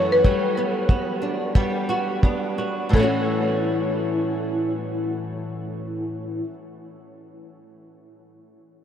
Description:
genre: acoustic pop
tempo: 84-95 BPM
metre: 4/4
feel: swing 60% on 16ths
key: A mixolydian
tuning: A4 = 440 Hz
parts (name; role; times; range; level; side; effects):
- buzzing marimba with medium hard mallets; melody; 0.0-6.3 s; A4 to C#5; -25 LUFS; left 1 dB; tape echo
- nylon-string guitar; accompaniment; 0.0-6.5 s; F#2 to F#4; -25 LUFS; left 1 dB; ensemble chorus
- direct-recorded clean electric guitar; arpeggios; 0.0-6.5 s; E3 to F#4; -30 LUFS; right 3 dB; lush chorus, tape echo
- cloth-damped thuddy drum kit; drums; 0.2-3.1 s; crash cymbal, kick drum; -19 LUFS; equal; none
room: wet huge ambient reverb, RT60 8.5 s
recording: dreamy mix soaked in reverb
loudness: -21 LUFS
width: side -9 dB against mid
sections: 0.0-2.9 A section; 2.9-5.8 B section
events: slowing down 0.0-2.9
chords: 0.2 Gmaj7; 2.9 A6

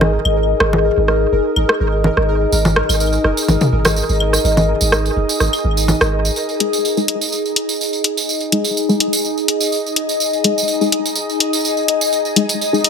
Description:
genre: minimal techno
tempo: 125 BPM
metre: 4/4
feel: swing 54% on 16ths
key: unclear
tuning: A4 = 440 Hz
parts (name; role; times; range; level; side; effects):
- punchy sub bass; bass; 0.0-6.3 s; F#1 to G#1; -18 LUFS; equal; none
- garage drum kit; percussion; 0.0-6.1 s; claves, congas, rim click, toms; -17 LUFS; equal; digital delay
- ethereal airy pad; texture; 0.0-12.9 s; D#4 to D#5; -18 LUFS; left 2 dB; ensemble chorus, built-in reverb, phaser
- pulsing gated texture; texture; 0.0-6.4 s; A#4; -25 LUFS; right 2 dB; chorus, built-in reverb
- electronic hi-hat; drums; 0.3-12.9 s; none; -15 LUFS; left 2 dB; overdrive, low-pass filter on hats, low-pass filter on snare
- tambourine; percussion; 2.5-12.8 s; none; -22 LUFS; right 4 dB; none
- filtered dub chord stab; stabs; 6.6-12.8 s; G#3 to G#4; -19 LUFS; left 3 dB; chorus, digital delay
room: moderate plate reverb, RT60 1.4 s, digital ambience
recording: none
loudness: -14 LUFS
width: side -6 dB against mid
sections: 0.0-6.4 A section; 6.4-12.9 B section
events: build-up 6.4-12.9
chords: 0.0 G#5

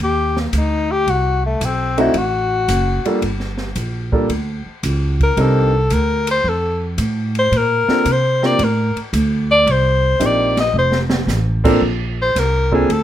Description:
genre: jazz, small-group swing and bop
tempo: 112 BPM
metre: 4/4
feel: swing 69% on 8ths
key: Bb major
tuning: A4 = 440 Hz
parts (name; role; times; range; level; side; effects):
- bright alto saxophone; melody; 0.0-13.0 s; A3 to Eb5; -17 LUFS; left 2 dB; none
- upright bass; bass; 0.0-13.0 s; F1 to C3; -19 LUFS; right 1 dB; none
- open jazz drum kit; drums; 0.0-13.0 s; crash cymbal, hi-hat, kick drum, ride cymbal, snare drum; -25 LUFS; equal; none
- warm grand piano; accompaniment; 2.0-12.9 s; G3 to Bb4; -17 LUFS; right 1 dB; none
room: light reverb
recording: none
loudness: -15 LUFS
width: side -11 dB against mid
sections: 0.0-11.8 A section; 11.8-13.0 B section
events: alto saxophone solo 0.0-11.8; drum fill 10.7-11.3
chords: 0.0 Eb; 1.1 Amadd9; 2.1 D; 3.2 Gm; 5.4 Cm9; 6.4 F; 7.5 Bbmaj9; 9.7 Cm7; 10.7 F; 11.8 Bbmaj9

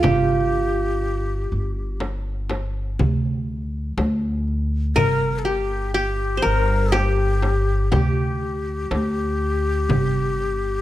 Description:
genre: Turkish makam ensemble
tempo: 122 BPM (eighths)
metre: 10/8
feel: straight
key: G makam huseyni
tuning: A4 = 438 Hz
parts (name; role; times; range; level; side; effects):
- qanun; melody; 0.0-10.8 s; F4 to C5; -23 LUFS; right 1 dB; none
- breathy ney; second line; 0.0-10.8 s; G4 to Bb4; -26 LUFS; left 4 dB; none
- upright bass; bass; 0.0-10.8 s; G1 to D2; -23 LUFS; equal; none
- darbuka; percussion; 0.0-10.5 s; none; -25 LUFS; right 4 dB; none
- frame drum; percussion; 0.0-10.1 s; none; -28 LUFS; left 3 dB; none
room: light reverb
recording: close, detailed microphones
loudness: -20 LUFS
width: side -14 dB against mid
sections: 0.0-10.8 A section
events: none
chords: none

